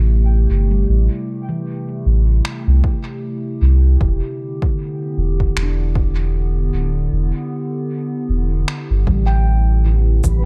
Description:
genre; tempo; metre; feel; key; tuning
ambient dub; 77 BPM; 4/4; swing 58% on 16ths; unclear; A4 = 440 Hz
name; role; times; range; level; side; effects
warbly tape-like pad; sustained chords; 0.0-10.5 s; C3 to G4; -27 LUFS; equal; chorus, built-in reverb
handpan; arpeggios; 0.0-10.5 s; E3 to G5; -32 LUFS; equal; low-pass filter, dub echo
soft dub sub bass; bass; 0.0-10.4 s; D1 to C2; -17 LUFS; equal; tube saturation
electronic finger snaps and cabasa; drums; 2.4-10.4 s; none; -33 LUFS; equal; overdrive, dub echo
electronic kick drum; drums; 2.8-10.4 s; none; -21 LUFS; equal; none
wind-like tuned noise texture; texture; 10.3-10.5 s; B3 to B4; -37 LUFS; equal; built-in reverb
room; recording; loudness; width
digital ambience; echo-heavy mix; -18 LUFS; mono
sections
0.0-10.5 A section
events
filter sweep on handpan 0.0-10.5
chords
0.0 Am7; 4.0 Em7

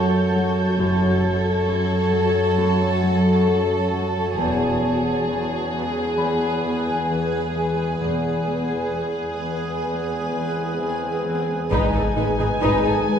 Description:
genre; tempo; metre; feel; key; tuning
cinematic, suspense film score; 66 BPM; 4/4; straight; unclear; A4 = 440 Hz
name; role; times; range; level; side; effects
warm chamber violin section; melody; 0.0-13.2 s; G#4 to G#5; -25 LUFS; left 2 dB; none
granular cloud pad; sustained chords; 0.0-13.2 s; F#4 to A5; -26 LUFS; right 2 dB; built-in reverb, tremolo
Celtic harp; riff; 0.0-13.2 s; E2 to C#4; -25 LUFS; left 2 dB; none
dark studio cello section; bass; 0.0-12.9 s; E2 to G#2; -26 LUFS; right 2 dB; none
concert harp; texture; 0.0-13.2 s; D#5 to D#6; -32 LUFS; left 4 dB; none
warm symphonic violin section; texture; 0.0-3.9 s; C#6 to G6; -33 LUFS; equal; none
warm symphonic double bass section; bass; 0.8-12.7 s; E1 to G#1; -31 LUFS; right 2 dB; none
swell and impact; sound effects; 10.6-13.2 s; none; -32 LUFS; right 1 dB; none
warm symphonic violin section; second line; 11.7-12.9 s; G#4 to B4; -26 LUFS; equal; none
warm symphonic viola section; accompaniment; 11.7-12.9 s; D#4; -25 LUFS; left 1 dB; none
dark trombone section; sustained chords; 11.7-13.2 s; D#3 to G#3; -31 LUFS; right 3 dB; none
warm French horn section; sustained chords; 11.7-13.2 s; B3 to G#4; -27 LUFS; left 1 dB; none
taiko ensemble; drums; 11.7-13.2 s; none; -29 LUFS; equal; none
room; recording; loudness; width
wet recital hall reverb, RT60 1.6 s; recorded in a church or concert hall, nothing above 10.5 kHz; -19 LUFS; side -8 dB against mid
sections
0.0-11.7 A section; 11.7-13.2 B section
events
swell 10.6-11.7; impact 11.7-13.2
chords
0.0 F#m; 4.4 E; 11.7 G#m

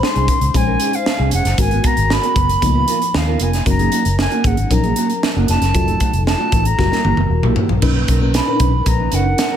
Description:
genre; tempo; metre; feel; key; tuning
polished 1980s jazz-funk pop; 115 BPM; 4/4; straight; unclear; A4 = 438 Hz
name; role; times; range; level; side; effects
silver concert flute; melody; 0.0-9.6 s; F5 to C6; -20 LUFS; equal; none
FM electric piano with soft pad layer; accompaniment; 0.0-9.6 s; A#2 to C5; -23 LUFS; left 4 dB; lush chorus
mellow electric guitar; riff; 0.0-9.6 s; A3 to Cb5; -24 LUFS; right 7 dB; wide subtle chorus
crisp fusion drum kit; drums; 0.0-9.5 s; crash cymbal, hi-hat, kick drum, snare drum, toms; -19 LUFS; equal; gated reverb
vintage muted fingered electric bass; bass; 0.2-9.3 s; Fb1 to Eb2; -18 LUFS; equal; none
room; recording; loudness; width
studio ambience; none; -14 LUFS; side -9 dB against mid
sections
0.0-7.8 A section; 7.8-9.6 B section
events
drum fill 6.8-7.8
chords
0.0 Bbm11; 1.6 Abm9; 2.6 Db13; 3.7 Gb6; 5.7 F7b9; 6.8 Gb7b9; 7.8 Bmaj9

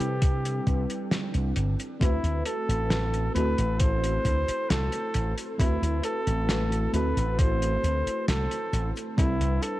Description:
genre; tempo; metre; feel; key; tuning
vaporwave; 67 BPM; 4/4; straight; unclear; A4 = 442 Hz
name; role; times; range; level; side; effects
mellow flugelhorn; melody; 0.0-9.8 s; E4 to C5; -31 LUFS; equal; tape echo
FM electric piano with soft pad layer; accompaniment; 0.0-9.8 s; G3 to B4; -31 LUFS; equal; analog chorus, vintage 12-bit sampler grit
slap bass with an envelope filter; bass; 0.0-9.6 s; G1 to C3; -27 LUFS; equal; none
cloth-damped thuddy drum kit; drums; 0.0-9.8 s; cabasa, hi-hat, snare drum; -32 LUFS; equal; gated reverb
electronic kick drum; drums; 0.2-9.4 s; none; -24 LUFS; equal; overdrive
room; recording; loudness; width
light reverb, small room ambience; none; -24 LUFS; side -16 dB against mid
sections
0.0-9.8 A section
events
none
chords
0.0 Cmaj9; 2.0 D13; 9.2 Cmaj9

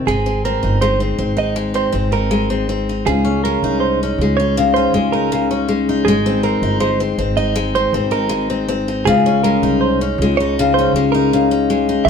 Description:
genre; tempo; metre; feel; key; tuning
acoustic pop; 80 BPM; 4/4; straight; unclear; A4 = 440 Hz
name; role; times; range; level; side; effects
picked steel-string acoustic guitar; accompaniment; 0.0-12.1 s; C3 to Eb4; -16 LUFS; left 3 dB; none
upright bass; bass; 0.0-12.1 s; G1 to Db2; -21 LUFS; equal; none
direct-recorded clean electric guitar; arpeggios; 0.1-12.1 s; Ab4 to E5; -20 LUFS; right 7 dB; none
warm brass ensemble; sustained chords; 12.1 s; E5 to C6; -26 LUFS; right 1 dB; none
room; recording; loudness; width
moderate stone room reverb, RT60 1.2 s; band playing live in one room; -14 LUFS; side -6 dB against mid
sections
0.1-12.1 A section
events
none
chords
0.1 Abadd9; 3.1 Dbsus2; 6.1 Abadd9; 9.1 Dbsus2

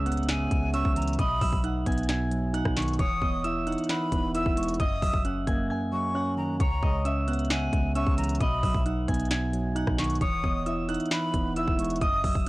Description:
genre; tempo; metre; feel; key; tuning
hip hop, trap; 133 BPM; 4/4; half-time; unclear; A4 = 440 Hz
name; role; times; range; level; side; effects
concert harp; melody; 0.0-12.5 s; F#4 to G#6; -32 LUFS; right 1 dB; none
mellow tine electric piano; accompaniment; 0.0-12.5 s; F#2 to E4; -29 LUFS; right 1 dB; none
warm 808-style bass; bass; 0.0-12.5 s; E1 to C#2; -31 LUFS; equal; tube saturation
impact; sound effects; 0.0-1.2 s; none; barely audible; none; none
trap drum kit; drums; 0.1-12.5 s; hi-hat, kick drum, rim click, snare drum; -29 LUFS; equal; none
breathy bright jazz flute; second line; 0.3-12.4 s; G#5 to E6; -34 LUFS; left 2 dB; analog delay
room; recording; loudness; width
little or no reverb; dry, gritty hardware recording, cassette tape; -24 LUFS; side -19 dB against mid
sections
0.0-12.5 A section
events
impact 0.0-1.2; drums muted 5.7-6.6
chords
0.0 C#m7; 1.2 B; 3.0 Emaj7; 4.8 F#6; 6.6 C#m7; 8.4 B; 10.2 Emaj7

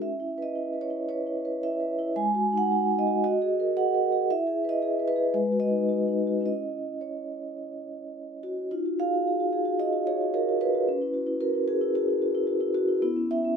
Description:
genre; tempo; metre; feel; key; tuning
classical, contemporary piece for solo vibraphone; 112 BPM; 4/4; rubato; C# dorian; A4 = 441 Hz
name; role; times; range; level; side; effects
vibraphone with soft mallets; solo; 0.0-13.6 s; G#3 to G#5; -24 LUFS; equal; none
room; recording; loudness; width
light reverb; minimal, uncompressed stereo recording; -24 LUFS; side -6 dB against mid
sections
0.0-8.7 A section; 8.7-13.6 B section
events
none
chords
0.0 C#m7; 2.2 G#5; 3.2 F#69; 4.3 E; 5.3 G#5; 6.5 C#madd9; 8.7 D#madd9; 10.9 C#m7; 13.0 Bsus24

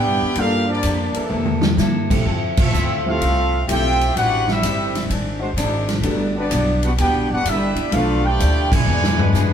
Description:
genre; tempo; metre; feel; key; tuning
jazz, big band swing; 127 BPM; 4/4; swing 67% on 8ths; G major; A4 = 442 Hz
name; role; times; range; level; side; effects
clear trumpet section; melody; 0.0-9.5 s; G#3 to Ab5; -22 LUFS; equal; none
bright trombone section; second line; 0.0-9.5 s; B2 to G4; -25 LUFS; right 1 dB; none
picked steel-string acoustic guitar; accompaniment; 0.0-9.5 s; G2 to A4; -26 LUFS; left 2 dB; none
upright bass; bass; 0.0-9.5 s; G1 to G#2; -22 LUFS; equal; none
warm upright piano; accompaniment; 0.4-8.2 s; F3 to A4; -25 LUFS; left 1 dB; none
swinging big-band drum kit; drums; 0.4-9.5 s; crash cymbal, hi-hat, kick drum, ride cymbal, snare drum, toms; -22 LUFS; equal; none
warm trombone section; sustained chords; 1.2-9.5 s; E3 to D5; -30 LUFS; equal; none
room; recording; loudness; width
moderate stone room reverb, RT60 1.2 s; band playing live in one room; -16 LUFS; side -8 dB against mid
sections
0.0-9.5 A section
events
drum fill 1.3-1.8, 8.9-9.3; band accent 2.5, 8.6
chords
0.4 Gm7; 1.3 C13; 2.3 Fmaj7; 4.1 Am7; 5.1 Ab7#11; 6.0 Gmaj7; 7.9 Bm7b5; 8.9 E7

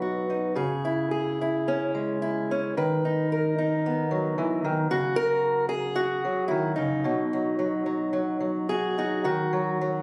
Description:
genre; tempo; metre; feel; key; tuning
folk, solo fingerstyle acoustic guitar; 110 BPM; 4/4; rubato; unclear; A4 = 440 Hz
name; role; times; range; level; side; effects
fingerpicked acoustic archtop guitar; solo; 0.0-10.0 s; B2 to B4; -26 LUFS; equal; none
room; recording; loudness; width
little or no reverb; recorded on a phone in the room, studio reverb, compression; -27 LUFS; mono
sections
0.0-9.2 A section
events
none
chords
0.0 B; 0.6 C#m; 2.8 B/D#; 4.9 F#/C#; 7.0 B; 9.2 D#m

